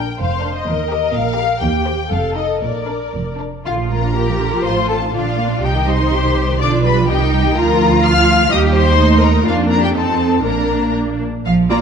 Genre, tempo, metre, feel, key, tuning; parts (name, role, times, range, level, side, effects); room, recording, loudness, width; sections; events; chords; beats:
quick classical-period movement for string orchestra; 115-127 BPM; 2/4; rubato; Bb major; A4 = 440 Hz
warm symphonic violin section; melody; 0.0-11.8 s; D5 to F6; -20 LUFS; left 6 dB
warm symphonic violin section; second line; 0.0-11.8 s; D4 to Bb5; -22 LUFS; left 4 dB
warm symphonic viola section; accompaniment; 0.0-11.8 s; C3 to D5; -20 LUFS; right 1 dB
dark studio double bass section; bass; 0.0-11.8 s; F1 to F2; -19 LUFS; right 3 dB
rich symphonic cello section; bass; 0.0-11.8 s; Eb2 to G4; -22 LUFS; right 3 dB
moderate scoring stage reverb, RT60 1.6 s; dark, warm production; -13 LUFS; side -7 dB against mid
0.0-3.7 A section; 3.7-11.5 B section
0.0 Bb; 0.7 Eb; 1.6 Cm/Eb; 2.1 F7; 2.6 Bb; 4.6 F7/A; 5.1 Bb; 5.6 Cm; 6.6 G7/B; 7.1 Cm; 7.6 Bb/D; 8.5 Eb; 9.5 Bb/F; 9.9 F7; 10.4 Bb
0.19 | 0.67 1.14 | 1.62 2.11 | 2.62 3.13 | 3.65 4.16 | 4.65 5.13 | 5.62 6.12 | 6.60 7.08 | 7.56 8.04 | 8.51 8.99 | 9.46 9.95 | 10.45 10.95 | 11.46